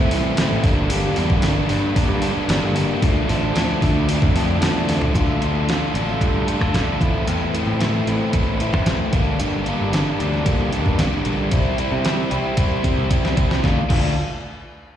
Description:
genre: indie rock.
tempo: 113 BPM.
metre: 4/4.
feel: straight.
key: D minor.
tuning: A4 = 440 Hz.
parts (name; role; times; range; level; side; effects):
crunchy overdriven guitar; riff; 0.0-14.1 s; G2 to A4; -21 LUFS; equal; slapback echo.
modern bright picked electric bass; bass; 0.0-14.2 s; G1 to D3; -23 LUFS; equal; none.
clean 12-bit digital drum machine; drums; 0.1-14.0 s; crash cymbal, hi-hat, kick drum, snare drum, toms; -21 LUFS; equal; none.
room: light reverb.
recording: live gig heard through the venue's PA, recital hall reverb.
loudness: -17 LUFS.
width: side -10 dB against mid.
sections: 0.0-5.1 A section; 5.1-13.6 B section; 13.6-15.0 C section.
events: drum fill 4.9, 12.6-13.6.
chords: 0.0 Am; 0.6 Gm; 3.0 Dm; 7.0 Am; 9.1 Gm; 11.5 C; 13.6 Dm.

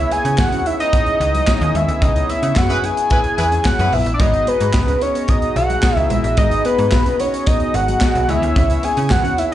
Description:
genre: early-eighties boogie funk.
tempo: 110 BPM.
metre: 4/4.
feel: straight.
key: unclear.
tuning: A4 = 440 Hz.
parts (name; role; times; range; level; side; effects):
fat analog lead; melody; 0.0-9.5 s; B4 to G#5; -18 LUFS; equal; chorus, slapback echo.
chorused polysynth; accompaniment; 0.0-9.5 s; B3 to D#5; -26 LUFS; left 2 dB; slapback echo.
mellow French horn section; sustained chords; 0.0-9.5 s; E3 to G#4; -32 LUFS; right 1 dB; none.
slap-like FM bass; bass; 0.0-9.3 s; G#1 to C#3; -19 LUFS; equal; none.
mellow electric guitar; riff; 0.1-9.5 s; F#3 to D#4; -29 LUFS; right 2 dB; lush chorus, slapback echo.
modern studio drum kit; drums; 0.1-9.5 s; handclaps, hi-hat, kick drum, snare drum; -19 LUFS; equal; none.
warm horn section; second line; 2.7-4.0 s; E4 to B4; -26 LUFS; left 1 dB; slapback echo.
room: small room ambience.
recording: live gig heard through the venue's PA, club reverb, nothing above 10.6 kHz.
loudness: -14 LUFS.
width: side -12 dB against mid.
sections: 0.0-9.5 A section.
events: band accent 2.0-4.2.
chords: 0.0 C#m9; 4.2 G#m7; 8.3 C#m9.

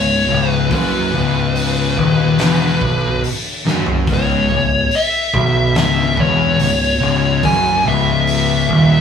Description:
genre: stoner and doom metal.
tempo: 71 BPM.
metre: 4/4.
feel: straight.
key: C# minor.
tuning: A4 = 440 Hz.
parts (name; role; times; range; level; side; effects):
fuzz lead guitar; melody; 0.0-9.0 s; B4 to G#5; -18 LUFS; left 1 dB; distortion.
thick fuzz guitar; riff; 0.0-9.0 s; C#2 to B2; -19 LUFS; left 9 dB; distortion.
thick fuzz guitar; riff; 0.0-9.0 s; C#2 to B2; -20 LUFS; right 5 dB; distortion.
overdriven picked electric bass; bass; 0.0-9.0 s; C#1 to B1; -21 LUFS; left 1 dB; tube saturation.
oversized low-tuned drum kit; drums; 0.7-8.9 s; hi-hat, kick drum, snare drum, toms; -22 LUFS; equal; none.
room: moderate stone room reverb, RT60 1.1 s.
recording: rough rehearsal-room recording, tube saturation, studio ambience.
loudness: -13 LUFS.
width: side -7 dB against mid.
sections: 0.0-9.0 A section.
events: drum fill 3.7-4.1.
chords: 0.0 C#m.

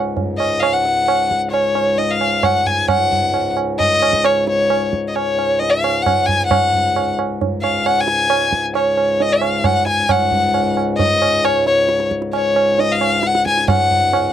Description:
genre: indian classical, Hindustani.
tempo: 133 BPM.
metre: 4/4.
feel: straight.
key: C# major.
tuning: A4 = 440 Hz.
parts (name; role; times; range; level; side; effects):
hand-pumped harmonium; drone; 0.0-14.3 s; C#2 to G#2; -24 LUFS; left 3 dB; none.
tabla; percussion; 0.2-14.3 s; none; -20 LUFS; right 7 dB; none.
clear violin; melody; 0.4-14.3 s; C#5 to G#5; -16 LUFS; left 2 dB; none.
room: little or no reverb.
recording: dry, close 1970s-style studio recording.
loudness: -14 LUFS.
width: side -10 dB against mid.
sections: 0.0-10.1 A section; 10.1-14.3 B section.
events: none.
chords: none.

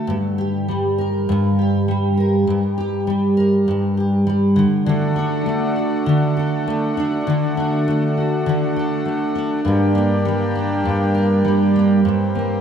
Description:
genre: acoustic pop.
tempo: 100 BPM.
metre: 4/4.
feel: swing 55% on 16ths.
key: G minor.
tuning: A4 = 444 Hz.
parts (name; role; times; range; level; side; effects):
fingerpicked steel-string acoustic guitar; accompaniment; 0.0-12.6 s; G2 to Bb4; -17 LUFS; equal; double-tracked left and right.
hand-pumped harmonium; sustained chords; 4.9-12.6 s; A3 to G4; -23 LUFS; left 1 dB; none.
room: wet lush hall reverb, RT60 2.6 s.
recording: rough home demo mix.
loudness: -16 LUFS.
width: side -8 dB against mid.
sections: 0.0-4.9 A section; 4.9-12.6 B section.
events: none.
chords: 0.1 Gm; 4.6 N.C.; 4.9 D; 9.7 Gm.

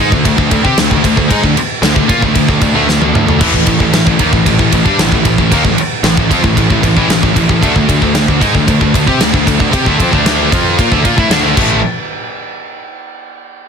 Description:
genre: heavy metal.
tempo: 114 BPM.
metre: 4/4.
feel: straight.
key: unclear.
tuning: A4 = 440 Hz.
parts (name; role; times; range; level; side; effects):
heavy high-gain guitar; riff; 0.0-11.8 s; A2 to G4; -16 LUFS; left 13 dB; distortion.
scooped high-gain guitar; riff; 0.0-11.8 s; A2 to G4; -16 LUFS; right 11 dB; distortion.
scooped high-gain guitar; riff; 0.0-11.8 s; A2 to G4; -17 LUFS; equal; distortion.
fuzz picked electric bass; bass; 0.0-11.8 s; A1 to C3; -18 LUFS; equal; overdrive.
big rock drum kit; drums; 0.1-11.7 s; crash cymbal, kick drum, ride cymbal, snare drum, toms; -14 LUFS; equal; none.
room: light reverb.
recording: dense, heavily limited modern master.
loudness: -9 LUFS.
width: side -6 dB against mid.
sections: 0.0-11.8 A section; 11.8-13.7 B section.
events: drum fill 2.9-3.4, 11.6.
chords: 0.0 D5; 3.4 A5; 7.6 D5; 11.6 Am; 11.8 N.C..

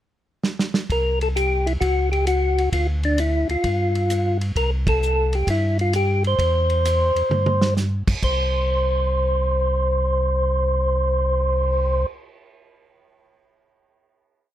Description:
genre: soul jazz organ trio.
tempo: 131 BPM.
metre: 4/4.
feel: swing 67% on 8ths.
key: C mixolydian.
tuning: A4 = 440 Hz.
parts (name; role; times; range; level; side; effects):
warm soul drum kit; drums; 0.4-11.8 s; crash cymbal, cymbal swell, hi-hat, kick drum, ride cymbal, snare drum, toms; -26 LUFS; right 2 dB; none.
percussive tonewheel organ; melody; 0.9-12.1 s; D4 to C5; -21 LUFS; equal; slow rotary speaker.
mellow tonewheel organ; bass; 0.9-12.0 s; C2 to G2; -22 LUFS; equal; slow rotary speaker.
room: little or no reverb.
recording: close, detailed microphones.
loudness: -18 LUFS.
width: side -12 dB against mid.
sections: 0.0-0.9 pickup bar; 0.9-8.2 A section; 8.2-11.9 final note.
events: drum fill 0.4-0.9, 7.3-7.8; band accent 4.8.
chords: 0.0 N.C.; 0.9 C7(no3); 1.8 Dbsus4; 2.7 Dmadd9; 3.6 Fsus2/G; 4.6 C; 8.2 N.C..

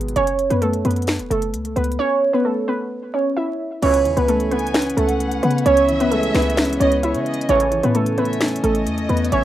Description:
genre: hip hop, trap.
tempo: 131 BPM.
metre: 4/4.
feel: half-time.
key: C# minor.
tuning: A4 = 439 Hz.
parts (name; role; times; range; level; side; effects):
dark concert grand piano; accompaniment; 0.0-0.2, 3.8-9.4 s; B2 to C#4; -24 LUFS; left 1 dB; none.
short 808-style bass; bass; 0.0-9.4 s; E1 to C#3; -23 LUFS; equal; none.
trap drum kit; drums; 0.0-9.4 s; crash cymbal, finger snaps, hi-hat, snare drum; -25 LUFS; left 1 dB; none.
warbly dusty pluck; melody; 0.2-9.4 s; A3 to E5; -18 LUFS; right 2 dB; chorus.
pipe organ, soft reed; sustained chords; 3.8-9.4 s; C#5 to B5; -35 LUFS; left 2 dB; none.
warm brass ensemble; stabs; 3.8-4.3, 7.5-7.9 s; C#2 to E3; -27 LUFS; left 2 dB; none.
dark studio violin section; second line; 4.5-9.4 s; C#5 to G#5; -28 LUFS; left 1 dB; digital delay.
room: wet small room reverb, RT60 0.6 s.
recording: rough home demo mix, vinyl crackle.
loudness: -16 LUFS.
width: side -12 dB against mid.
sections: 0.0-3.8 A section; 3.8-9.4 B section.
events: break 0.0.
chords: 0.2 F#m7; 3.8 C#m7; 7.5 Amaj7.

